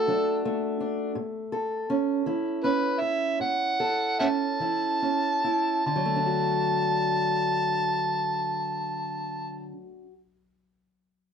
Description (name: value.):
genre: acoustic country blues, solo or duo.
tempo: 46-57 BPM (dotted quarters).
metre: 12/8.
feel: straight.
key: D major.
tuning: A4 = 440 Hz.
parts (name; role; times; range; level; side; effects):
overdriven harmonica; melody; 0.0-9.7 s; A4 to A5; -26 LUFS; right 2 dB; none.
fingerpicked steel-string acoustic guitar; accompaniment; 0.0-10.1 s; A2 to A4; -28 LUFS; equal; none.
room: moderate studio reverb, RT60 0.8 s.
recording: none.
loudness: -24 LUFS.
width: side -7 dB against mid.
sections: 0.0-5.8 A section; 5.8-11.1 B section.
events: slowing down 0.0-5.8.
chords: 0.0 D; 1.1 A; 5.8 D.